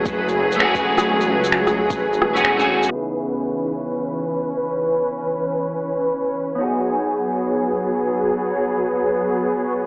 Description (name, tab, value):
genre	future garage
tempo	130 BPM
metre	4/4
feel	swing 63% on 16ths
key	C# minor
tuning	A4 = 440 Hz
part	rich symphonic string section	sustained chords	0.0-9.9 s	E3 to B4	-23 LUFS	equal	sidechain pumping
part	swelling detuned saw bass	bass	0.0-2.9 s	E1 to C#2	-30 LUFS	equal	transformer saturation, sidechain pumping
part	backwards swelling texture	texture	0.0-9.9 s	B4 to C#5	-32 LUFS	equal	built-in reverb
part	electronic kick drum	drums	0.1-2.0 s	none	-32 LUFS	equal	none
part	electronic shaker, finger snaps and rim click	drums	0.1-2.9 s	none	-24 LUFS	equal	none
part	electric guitar at the edge of break-up	accompaniment	0.6-9.9 s	C#3 to G#4	-26 LUFS	equal	analog chorus, sidechain pumping, tape echo
room	moderate recital hall reverb, RT60 1.4 s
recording	dry, gritty hardware recording, cassette tape, low-pass filter, AM radio sound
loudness	-21 LUFS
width	mono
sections	0.0-2.9 A section; 2.9-9.9 B section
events	kick drops out 2.0-2.9; filter sweep 2.9-9.9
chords	0.0 F#madd9; 2.9 C#m7; 6.6 G#m7